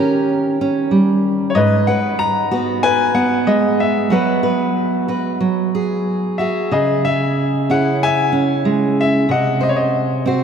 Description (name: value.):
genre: acoustic folk-pop ballad.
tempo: 93 BPM.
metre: 4/4.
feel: straight.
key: unclear.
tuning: A4 = 440 Hz.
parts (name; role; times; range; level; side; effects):
clear baby grand piano; melody; 0.0-10.2 s; G4 to A#5; -19 LUFS; left 3 dB; none.
fingerpicked steel-string acoustic guitar; accompaniment; 0.0-10.4 s; G#2 to B#4; -16 LUFS; right 2 dB; none.
room: wet cathedral reverb, RT60 5.3 s.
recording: in a vast, echoing space.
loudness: -14 LUFS.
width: side -7 dB against mid.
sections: 0.0-10.4 A section.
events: none.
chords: 0.0 D#7; 1.6 G#m7; 4.1 F#sus4; 5.4 F#sus2; 6.7 C#m; 9.3 G#7/B#.